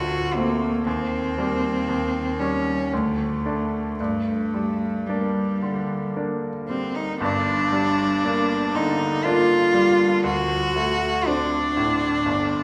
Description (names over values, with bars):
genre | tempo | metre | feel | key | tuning
classical, romantic duo for cello and grand piano | 57 BPM | 3/4 | uneven beats, rubato | G minor | A4 = 440 Hz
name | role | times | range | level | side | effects
rich cello | melody | 0.0-12.6 s | G3 to F#4 | -25 LUFS | equal | none
bright grand piano | accompaniment | 0.0-12.6 s | G1 to D4 | -27 LUFS | equal | none
room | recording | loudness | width
wet recital hall reverb, RT60 1.7 s | heard from further back in the room | -23 LUFS | mono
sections
0.0-7.2 A section; 7.2-12.6 A section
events
none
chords
0.0 D7; 0.9 Eb6; 1.9 Eb7; 2.9 D5; 4.0 Gm; 10.3 D7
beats
| 0.86 1.87 2.92 | 3.99 5.07 6.14 | 7.20 8.24 9.24 | 10.25 11.27 12.26